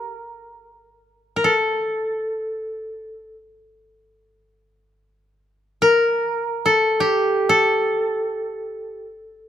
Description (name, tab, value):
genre	japanese traditional, Japanese chamber music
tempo	free time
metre	none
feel	none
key	unclear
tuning	A4 = 439 Hz
part	koto	solo	0.0-9.5 s	G4 to Bb4	-18 LUFS	left 1 dB	none
room	light reverb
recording	close, detailed microphones, faint mains hum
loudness	-18 LUFS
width	side -10 dB against mid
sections	0.0-9.5 A section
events	none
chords	none